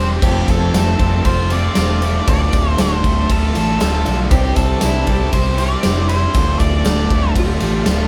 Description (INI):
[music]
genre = classic rock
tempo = 118 BPM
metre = 4/4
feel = straight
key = D minor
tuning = A4 = 440 Hz
[part]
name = octave-fuzz lead guitar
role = melody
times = 0.0-7.3 s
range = G4 to D5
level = -25 LUFS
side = equal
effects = distortion
[part]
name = fingerpicked twelve-string acoustic guitar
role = accompaniment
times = 0.0-8.1 s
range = C3 to C5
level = -31 LUFS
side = equal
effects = none
[part]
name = distorted electric guitar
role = riff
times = 0.0-8.1 s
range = D2 to C5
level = -26 LUFS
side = equal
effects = overdrive
[part]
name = raw garage guitar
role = riff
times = 0.0-8.1 s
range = D2 to C5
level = -26 LUFS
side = equal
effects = overdrive
[part]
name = fingered electric bass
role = bass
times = 0.0-8.1 s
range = D1 to C2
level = -21 LUFS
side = equal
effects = none
[part]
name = tonewheel organ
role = sustained chords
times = 0.2-8.1 s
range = none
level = barely audible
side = none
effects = none
[part]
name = big rock drum kit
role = drums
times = 0.2-8.0 s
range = crash cymbal, kick drum, ride cymbal, snare drum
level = -20 LUFS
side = equal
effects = none
[part]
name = tambourine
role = percussion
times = 0.2-8.0 s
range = none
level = -39 LUFS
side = equal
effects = none
[part]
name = clean lap steel guitar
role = second line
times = 7.4-8.1 s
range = G4 to A4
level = -28 LUFS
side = equal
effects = none
[sound]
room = light reverb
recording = band playing live in one room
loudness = -16 LUFS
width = mono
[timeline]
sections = 0.0-8.1 A section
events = none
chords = 0.2 F6; 2.3 Dm; 4.3 Cadd9; 6.3 Dm